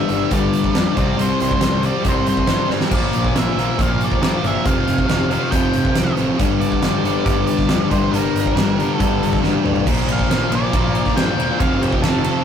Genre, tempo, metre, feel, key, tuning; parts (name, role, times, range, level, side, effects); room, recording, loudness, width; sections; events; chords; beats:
quiet-loud alternative rock; 138 BPM; 4/4; straight; G minor; A4 = 442 Hz
octave-fuzz lead guitar; melody; 0.0-12.4 s; G4 to G5; -25 LUFS; right 1 dB; distortion
fuzz guitar; riff; 0.0-12.4 s; F2 to C4; -20 LUFS; left 5 dB; distortion
high-gain distorted guitar; riff; 0.0-12.4 s; F2 to C4; -24 LUFS; right 7 dB; distortion
fuzz picked electric bass; bass; 0.1-12.3 s; E1 to G2; -24 LUFS; right 1 dB; overdrive
huge arena drum kit; drums; 0.1-12.3 s; crash cymbal, hi-hat, kick drum, ride cymbal, snare drum, toms; -20 LUFS; right 1 dB
moderate studio reverb, RT60 0.5 s; rough rehearsal-room recording, warm saturation; -15 LUFS; side -8 dB against mid
0.0-9.9 A section; 9.9-12.4 B section
drum fill 2.7, 9.4-9.9; lead electric guitar solo 9.9-12.4
0.0 G5; 1.0 C5; 2.9 Bb; 4.7 Fsus2; 6.4 G5; 7.9 Gm; 9.9 Bb; 11.6 Fadd9
0.30 0.74 | 1.17 1.61 2.04 2.48 | 2.91 3.35 3.78 4.22 | 4.65 5.08 5.52 5.95 | 6.39 6.82 7.26 7.69 | 8.12 8.56 8.99 9.43 | 9.86 10.29 10.73 11.16 | 11.59 12.03